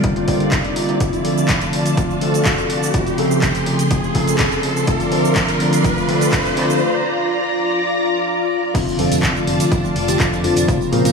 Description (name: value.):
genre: filtered disco house.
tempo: 124 BPM.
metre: 4/4.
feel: straight.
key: F major.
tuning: A4 = 439 Hz.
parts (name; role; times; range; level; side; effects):
bell-like tine electric piano; accompaniment; 0.0-11.1 s; Db3 to Bb4; -18 LUFS; equal; phaser, sidechain pumping, low-pass filter.
string machine, full ensemble; sustained chords; 0.0-11.1 s; F4 to C6; -22 LUFS; left 1 dB; ensemble chorus, sidechain pumping, low-pass filter.
modern bright fingered electric bass; bass; 0.0-11.1 s; F1 to C3; -27 LUFS; left 1 dB; none.
electronic kick drum; drums; 0.0-10.8 s; none; -22 LUFS; equal; none.
punchy analog drum machine; drums; 0.0-11.1 s; crash cymbal, handclaps, hi-hat, shaker; -24 LUFS; equal; sidechain pumping on hats, sidechain pumping on perc, sidechain pumping on cymbals.
riser and impact; sound effects; 0.0-10.7 s; none; -25 LUFS; right 1 dB; none.
tambourine; percussion; 8.7-11.1 s; none; -32 LUFS; right 8 dB; sidechain pumping on perc, low-pass filter on perc.
room: moderate echo chamber reverb, RT60 1.5 s.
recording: studio reverb.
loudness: -15 LUFS.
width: side -5 dB against mid.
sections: 0.0-8.7 A section; 8.7-11.1 B section.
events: build-up 0.0-8.7; riser 0.0-6.8; filter sweep 0.0-8.7; break 6.8-8.7; drop 8.7-11.1; impact 8.7-10.7.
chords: 0.0 C9sus4; 1.0 F6; 2.9 Bbmadd9; 4.6 Dm7; 6.6 C9sus4; 8.7 F6.